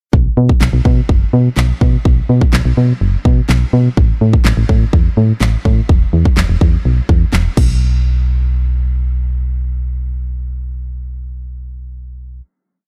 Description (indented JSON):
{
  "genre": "dance-pop",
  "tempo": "125 BPM",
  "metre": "4/4",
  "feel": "straight",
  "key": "unclear",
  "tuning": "A4 = 440 Hz",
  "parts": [
    { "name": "solid FM bass", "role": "bass", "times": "0.1-12.4 s", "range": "E1 to B2", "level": "-16 LUFS", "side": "equal", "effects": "sidechain pumping" },
    { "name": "pop drum kit", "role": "drums", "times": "0.1-7.7 s", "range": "crash cymbal, handclaps, kick drum, snare drum", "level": "-15 LUFS", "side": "equal", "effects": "none" }
  ],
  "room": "little or no reverb",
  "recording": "none",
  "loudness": "-13 LUFS",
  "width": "mono",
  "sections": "0.1-7.8 verse; 7.8-11.7 final hit",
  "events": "none",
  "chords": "none"
}